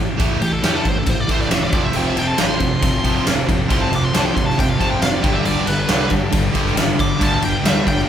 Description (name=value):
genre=hard rock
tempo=137 BPM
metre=4/4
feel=straight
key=unclear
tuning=A4 = 440 Hz
part: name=overdriven semi-hollow guitar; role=riff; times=0.0-8.1 s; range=F2 to A3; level=-25 LUFS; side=left 5 dB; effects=none
part: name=overdriven semi-hollow guitar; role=riff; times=0.0-8.1 s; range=F2 to A3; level=-24 LUFS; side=right 6 dB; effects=none
part: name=fuzz fingered electric bass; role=bass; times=0.0-8.0 s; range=E1 to G2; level=-25 LUFS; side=equal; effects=overdrive
part: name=huge arena drum kit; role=drums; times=0.2-8.0 s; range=crash cymbal, kick drum, ride cymbal, snare drum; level=-19 LUFS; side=equal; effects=none
part: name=bluesy overdriven lead guitar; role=melody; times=0.4-8.1 s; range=G4 to D6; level=-23 LUFS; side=equal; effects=distortion
part: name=tonewheel organ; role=sustained chords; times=1.9-8.1 s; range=F3 to B4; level=-31 LUFS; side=left 1 dB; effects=none
part: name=distorted electric guitar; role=riff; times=1.9-8.1 s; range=F2 to D4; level=-26 LUFS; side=left 1 dB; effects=overdrive
room=moderate large studio reverb, RT60 1.0 s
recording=band playing live in one room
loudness=-15 LUFS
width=side -9 dB against mid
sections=0.0-8.1 A section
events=lead electric guitar solo 0.0-8.1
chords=0.0 A5; 1.7 F; 5.2 G